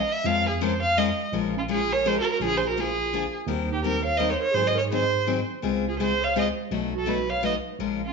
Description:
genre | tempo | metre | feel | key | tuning
acoustic string swing (jazz manouche) | 167 BPM | 3/4 | swing 61% on 8ths | Bb minor | A4 = 435 Hz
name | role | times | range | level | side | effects
rich violin | melody | 0.0-8.1 s | F4 to F5 | -25 LUFS | right 2 dB | none
tine electric piano | bass | 0.0-8.1 s | Bb1 to Ab2 | -32 LUFS | right 2 dB | medium stereo tremolo
picked steel-string acoustic guitar | accompaniment | 0.3-8.0 s | B2 to Bb4 | -28 LUFS | left 8 dB | none
breathy clarinet | second line | 1.6-8.1 s | Db4 to Db5 | -31 LUFS | right 9 dB | none
room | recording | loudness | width
wet echo chamber reverb, RT60 1.3 s, studio ambience | 1960s-style stereo with parts hard left and right, nothing above 7.6 kHz | -22 LUFS | side -4 dB against mid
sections
0.0-1.3 A section; 1.3-8.1 B section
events
violin solo 0.0-1.3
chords
0.0 Bbm7; 2.4 Bb7; 3.5 Eb6; 4.6 Ab7; 5.6 Dbmaj7; 6.7 B7

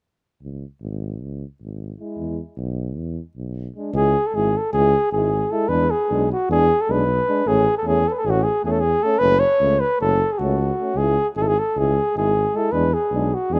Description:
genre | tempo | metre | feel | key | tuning
balkan folk, Balkan brass band | 307 BPM (eighths) | 9/8 | straight | C# minor | A4 = 440 Hz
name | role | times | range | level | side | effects
mellow tuba | bass | 0.4-13.6 s | F#1 to E2 | -26 LUFS | equal | none
clear euphonium | accompaniment | 2.0-13.6 s | C#4 to E4 | -31 LUFS | equal | none
mellow trombone | accompaniment | 2.0-13.6 s | G#3 to A3 | -33 LUFS | equal | none
mellow flugelhorn | melody | 4.0-13.6 s | F#4 to C#5 | -21 LUFS | equal | none
room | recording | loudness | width
light reverb | rough home demo mix | -20 LUFS | mono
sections
0.4-3.9 A section; 3.9-13.6 B section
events
none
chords
0.4 C#5; 2.2 E; 3.9 C#m; 5.7 E7; 7.4 A; 9.2 F#m; 11.0 C#m; 12.7 E7

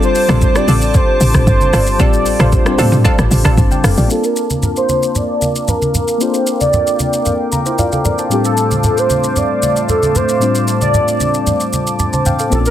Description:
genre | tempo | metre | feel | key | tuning
amapiano | 114 BPM | 4/4 | straight | F major | A4 = 440 Hz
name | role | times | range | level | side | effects
warm velvety synth lead | melody | 0.0-12.7 s | G4 to D5 | -17 LUFS | right 1 dB | chorus, low-pass filter, digital delay
mellow FM electric piano | accompaniment | 0.0-12.7 s | A2 to Bb5 | -19 LUFS | left 4 dB | chorus, low-pass filter
hollow soft pad | sustained chords | 0.0-12.7 s | A3 to D6 | -22 LUFS | right 2 dB | chorus, low-pass filter
punchy chord stab | stabs | 0.0-3.6 s | D4 to A4 | -22 LUFS | right 1 dB | chorus, digital delay
deep house drum kit | drums | 0.0-12.7 s | hi-hat, kick drum, rim click, shaker, toms | -17 LUFS | equal | soft clipping on snare
tight log drum bass | bass | 0.3-4.1 s | F1 to A2 | -14 LUFS | equal | none
congas | percussion | 0.3-12.4 s | none | -19 LUFS | right 1 dB | none
plucky analog bass | bass | 12.5-12.7 s | Bb1 | -14 LUFS | equal | none
room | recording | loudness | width
little or no reverb | dense, heavily limited modern master | -11 LUFS | side -11 dB against mid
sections
0.0-4.1 A section; 4.1-12.7 B section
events
drop 0.0-4.1; filter sweep 4.1-12.7; FM electric piano fill 7.3-8.3, 11.7-12.5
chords
0.0 F6; 4.1 Bbmaj7; 8.3 F6/A

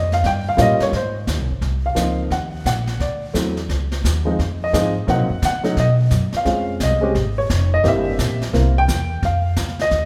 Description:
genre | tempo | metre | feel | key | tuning
jazz piano trio | 174 BPM | 4/4 | swing 64% on 8ths | Ab major | A4 = 440 Hz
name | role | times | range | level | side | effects
warm upright piano | melody | 0.0-10.1 s | F3 to G5 | -22 LUFS | equal | none
upright bass | bass | 0.0-10.1 s | F1 to Db3 | -23 LUFS | equal | none
jazz brush drum kit | drums | 0.1-10.1 s | brushed snare drum, hi-hat, kick drum, snare drum | -29 LUFS | equal | none
room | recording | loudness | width
moderate recital hall reverb, RT60 1.7 s | recorded in a church or concert hall | -19 LUFS | mono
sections
0.9-10.1 A section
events
upright piano solo 0.0-10.1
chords
0.0 Eb7; 0.9 Ab6; 2.3 Ebm; 3.0 D9; 3.7 Dbmaj9; 5.1 Cm7b5; 5.8 B5; 6.5 Dbmaj9; 7.8 C7; 9.2 F7(no3)

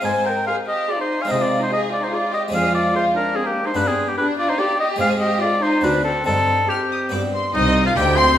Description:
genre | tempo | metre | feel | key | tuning
classical, baroque-style concerto movement with solo episodes | 145 BPM | 3/4 | straight | C minor | A4 = 437 Hz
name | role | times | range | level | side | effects
warm oboe | melody | 0.0-8.4 s | Eb4 to Ab5 | -20 LUFS | left 1 dB | none
rich chamber violin section | second line | 0.0-8.4 s | Bb3 to C6 | -23 LUFS | left 1 dB | none
harpsichord | accompaniment | 0.0-8.3 s | C2 to Eb4 | -25 LUFS | equal | none
rich chamber cello section | bass | 0.1-8.4 s | C2 to C3 | -28 LUFS | right 2 dB | none
warm symphonic violin section | melody | 0.5-8.4 s | Eb5 to F6 | -23 LUFS | left 2 dB | none
rich chamber viola section | accompaniment | 0.5-8.4 s | C4 to Ab4 | -29 LUFS | right 1 dB | none
rich chamber double bass section | bass | 7.5-8.4 s | C2 to D2 | -22 LUFS | right 2 dB | none
room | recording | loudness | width
wet recital hall reverb, RT60 1.3 s | recorded in a church or concert hall | -17 LUFS | side -10 dB against mid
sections
0.0-7.5 A section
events
none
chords
0.1 Ab; 1.3 Ab/C; 2.5 Dm7b5/F; 3.8 G; 5.0 Ab; 5.8 D7; 6.3 Cm/G; 7.1 G; 7.5 Cm

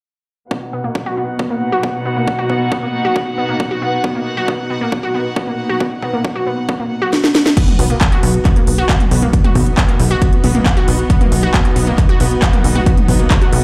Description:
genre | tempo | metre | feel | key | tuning
uplifting trance | 136 BPM | 4/4 | straight | B major | A4 = 440 Hz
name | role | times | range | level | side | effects
rich chamber string section | sustained chords | 0.5-13.6 s | B2 to F#5 | -24 LUFS | equal | sidechain pumping, low-pass filter
unison pluck | arpeggios | 0.5-13.6 s | A#3 to F#4 | -22 LUFS | equal | sidechain pumping, dub echo
electronic kick drum | drums | 0.5-13.4 s | none | -17 LUFS | equal | overdrive, high-pass filter on kick, small room ambience
techno drum kit | drums | 7.1-13.6 s | crash cymbal, handclaps, hi-hat, snare drum, toms | -20 LUFS | equal | overdrive, small room ambience, sidechain pumping on hats, sidechain pumping on cymbals, sidechain pumping on toms
plucky analog bass | bass | 7.8-13.6 s | B1 | -17 LUFS | equal | sidechain pumping
room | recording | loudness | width
light reverb | played on a big sound system in a bare room, large studio reverb | -15 LUFS | mono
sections
0.5-7.6 A section; 7.6-13.6 B section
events
filter sweep on synth pluck 0.5-7.6; filter sweep on string section 0.5-7.6; drum fill 7.1-7.6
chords
0.5 B

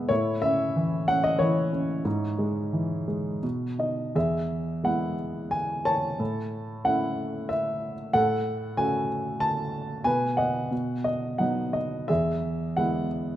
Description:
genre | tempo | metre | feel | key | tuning
classical, lyrical solo piano | 83-96 BPM | 3/4 | rubato | E major from 4.2 s | A4 = 440 Hz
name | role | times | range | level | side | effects
dark baby grand piano | solo | 0.0-13.4 s | E2 to A5 | -24 LUFS | equal | none
room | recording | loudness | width
moderate scoring stage reverb, RT60 1.8 s | dark, warm production | -24 LUFS | side -12 dB against mid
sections
0.0-4.2 A section; 4.2-13.4 B section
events
none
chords
0.1 A; 2.1 C#m/G#; 3.4 B; 4.2 E; 6.2 A; 8.1 F#m/A; 10.1 B6; 10.7 B; 12.1 E

